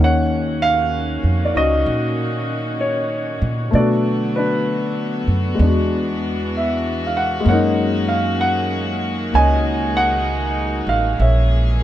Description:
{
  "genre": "jazz ballad",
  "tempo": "64 BPM",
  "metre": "4/4",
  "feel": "swing 66% on 8ths",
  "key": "Eb minor",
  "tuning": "A4 = 440 Hz",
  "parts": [
    { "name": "warm grand piano", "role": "accompaniment", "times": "0.0-11.8 s", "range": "Eb3 to Ab5", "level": "-19 LUFS", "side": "left 1 dB", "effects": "none" },
    { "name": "warm chamber string section", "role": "sustained chords", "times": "0.0-11.8 s", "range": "D3 to Ab4", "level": "-25 LUFS", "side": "equal", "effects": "none" },
    { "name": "upright bass", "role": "bass", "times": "0.0-11.8 s", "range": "A1 to B2", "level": "-20 LUFS", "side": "right 1 dB", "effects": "none" }
  ],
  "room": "light reverb",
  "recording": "close, detailed microphones",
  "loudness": "-16 LUFS",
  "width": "side -12 dB against mid",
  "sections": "0.0-11.8 A section",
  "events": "none",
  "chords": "0.0 Ebm9; 3.7 Bm7; 5.6 E9; 7.5 Gb69; 11.2 Bbm7b5",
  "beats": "0.92 1.85 2.79 | 3.73 4.66 5.59 6.52 | 7.46 8.39 9.32 10.26 | 11.19"
}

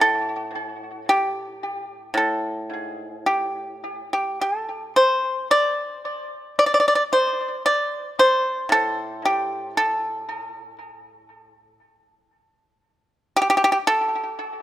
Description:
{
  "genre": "chinese traditional",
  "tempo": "51-60 BPM",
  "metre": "4/4",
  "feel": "rubato",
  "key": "A yu mode",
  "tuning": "A4 = 440 Hz",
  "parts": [
    { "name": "pipa", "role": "solo", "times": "0.0-14.6 s", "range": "A2 to D5", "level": "-20 LUFS", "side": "equal", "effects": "tape echo" }
  ],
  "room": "light reverb",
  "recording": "close, detailed microphones",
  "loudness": "-20 LUFS",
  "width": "side -13 dB against mid",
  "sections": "0.0-4.4 A section; 4.4-14.6 B section",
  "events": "none",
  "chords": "none",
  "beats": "1.07 2.15 3.26 | 4.41 5.51 6.59 7.65 | 8.71 9.77 10.80 11.81 | 12.83 13.85"
}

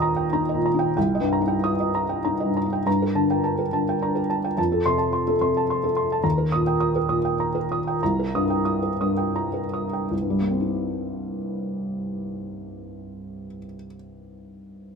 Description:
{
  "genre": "neoclassical minimalist piano",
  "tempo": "77-109 BPM",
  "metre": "3/4",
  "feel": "rubato",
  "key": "C dorian",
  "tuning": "A4 = 440 Hz",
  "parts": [
    { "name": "felt-muted upright piano", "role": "solo", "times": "0.0-15.0 s", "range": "C2 to Eb6", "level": "-22 LUFS", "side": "equal", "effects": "none" }
  ],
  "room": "light reverb",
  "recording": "minimal, uncompressed stereo recording",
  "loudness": "-21 LUFS",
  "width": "side -5 dB against mid",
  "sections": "0.0-2.9 A section; 2.9-10.1 B section; 10.1-14.6 C section",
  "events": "slowing down 5.4-10.1",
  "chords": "0.0 Eb; 1.0 Cm7; 2.9 Gmadd9; 4.6 F; 6.2 Eb; 8.0 Cm7",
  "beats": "0.31 | 0.96 1.61 2.24 | 2.86 3.45 4.02 | 4.58 5.14 5.69 | 6.24 6.80 7.39 | 8.01 8.66 9.36 | 10.12 10.86 11.60 | 12.36 13.10 13.85"
}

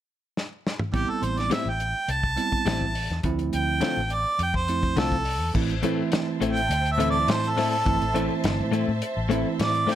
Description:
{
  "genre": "straight-eighth soul blues",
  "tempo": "104 BPM",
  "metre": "4/4",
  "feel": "straight",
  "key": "A minor",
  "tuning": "A4 = 440 Hz",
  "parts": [
    { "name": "warm soul drum kit", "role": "drums", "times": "0.4-9.9 s", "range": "crash cymbal, hi-hat, kick drum, snare drum, toms", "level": "-29 LUFS", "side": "left 1 dB", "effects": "none" },
    { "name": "bright harmonica", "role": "melody", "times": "0.9-9.9 s", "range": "G4 to A5", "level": "-26 LUFS", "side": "right 2 dB", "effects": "overdrive" },
    { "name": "bell-like tine electric piano", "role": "accompaniment", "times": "0.9-9.8 s", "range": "E3 to E4", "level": "-28 LUFS", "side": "right 7 dB", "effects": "none" },
    { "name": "vintage muted fingered electric bass", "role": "bass", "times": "0.9-9.9 s", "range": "G1 to A2", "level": "-28 LUFS", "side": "left 1 dB", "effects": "none" },
    { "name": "direct-recorded clean electric guitar", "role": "stabs", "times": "1.5-9.9 s", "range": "A2 to F4", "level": "-29 LUFS", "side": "left 7 dB", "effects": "spring reverb" },
    { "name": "clear symphonic string section", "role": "sustained chords", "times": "5.6-9.9 s", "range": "C5 to A5", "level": "-34 LUFS", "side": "right 1 dB", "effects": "none" }
  ],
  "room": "light reverb",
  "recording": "none",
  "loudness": "-22 LUFS",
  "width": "side -11 dB against mid",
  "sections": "0.9-5.6 A section; 5.6-9.9 B section",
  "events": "drum fill 0.4-0.9",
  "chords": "0.0 N.C.; 0.9 Am7; 3.2 Dm7; 5.6 Am",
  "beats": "0.36 | 0.94 1.51 2.09 2.67 | 3.25 3.83 4.40 4.98 | 5.56 6.13 6.71 7.29 | 7.86 8.44 9.02 9.59"
}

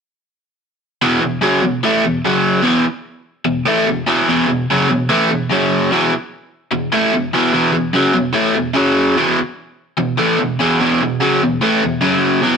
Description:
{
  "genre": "rock",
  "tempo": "147 BPM",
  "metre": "4/4",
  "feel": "straight",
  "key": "unclear",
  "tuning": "A4 = 440 Hz",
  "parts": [
    { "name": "overdriven electric guitar", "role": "solo", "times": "1.0-12.6 s", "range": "E2 to A3", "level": "-13 LUFS", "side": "equal", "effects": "none" }
  ],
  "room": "moderate stone room reverb, RT60 1.0 s",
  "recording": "rough rehearsal-room recording",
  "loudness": "-13 LUFS",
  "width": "side -6 dB against mid",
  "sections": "1.0-12.6 A section",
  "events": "none",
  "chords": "1.0 E5; 2.2 F#5; 2.7 E5; 5.5 F#5; 5.9 E5; 8.8 F#5; 9.2 E5; 12.0 F#5",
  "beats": "| 1.02 1.43 1.84 2.25 | 2.65 3.06 3.47 3.88 | 4.29 4.69 5.10 5.51 | 5.92 6.33 6.74 7.14 | 7.55 7.96 8.37 8.78 | 9.19 9.59 10.00 10.41 | 10.81 11.22 11.63 12.03 | 12.44"
}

